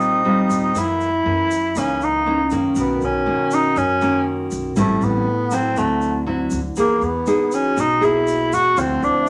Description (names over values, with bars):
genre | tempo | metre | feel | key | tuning
bossa nova | 120 BPM | 4/4 | straight | unclear | A4 = 438 Hz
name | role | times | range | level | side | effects
breathy tenor saxophone | melody | 0.0-9.3 s | A3 to F#4 | -21 LUFS | equal | none
nylon-string guitar | accompaniment | 0.0-9.3 s | Gb2 to G#4 | -24 LUFS | equal | none
vibraphone with medium mallets | accompaniment | 0.0-9.3 s | Db4 to G5 | -28 LUFS | equal | none
upright bass | bass | 0.0-9.3 s | A1 to Gb2 | -32 LUFS | equal | none
tube shaker | percussion | 0.0-9.3 s | none | -41 LUFS | equal | none
room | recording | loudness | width
wet studio reverb, RT60 0.8 s | none | -19 LUFS | mono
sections
0.0-2.8 A section; 2.8-9.3 B section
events
none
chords
0.0 Eb69; 0.8 Gb6; 2.8 Bmaj9; 4.8 Am7; 5.8 D9; 6.8 Emaj9#11; 8.8 Dm9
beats
0.25 | 0.75 1.25 1.76 2.26 | 2.76 3.26 3.76 4.26 | 4.76 5.26 5.77 6.27 | 6.77 7.27 7.77 8.27 | 8.77 9.27